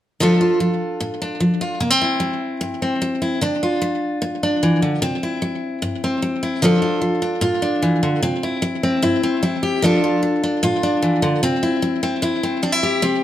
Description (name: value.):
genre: country.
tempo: 150 BPM.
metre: 4/4.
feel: straight.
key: D minor.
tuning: A4 = 444 Hz.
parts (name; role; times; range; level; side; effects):
picked steel-string acoustic guitar; solo; 0.2-13.2 s; G2 to A4; -17 LUFS; equal; slapback echo.
room: moderate studio reverb, RT60 0.9 s.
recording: none.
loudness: -17 LUFS.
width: side -12 dB against mid.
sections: 0.2-6.6 A section; 6.6-13.2 B section.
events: none.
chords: 0.2 Dm; 1.8 C; 3.4 Dm; 5.0 C; 6.6 Dm; 8.2 C; 9.8 Dm; 11.4 C.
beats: | 0.20 0.60 1.00 1.41 | 1.81 2.21 2.61 3.01 | 3.41 3.81 4.21 4.62 | 5.01 5.42 5.82 6.22 | 6.62 7.02 7.42 7.82 | 8.22 8.62 9.02 9.42 | 9.82 10.22 10.62 11.02 | 11.42 11.82 12.22 12.62 | 13.02.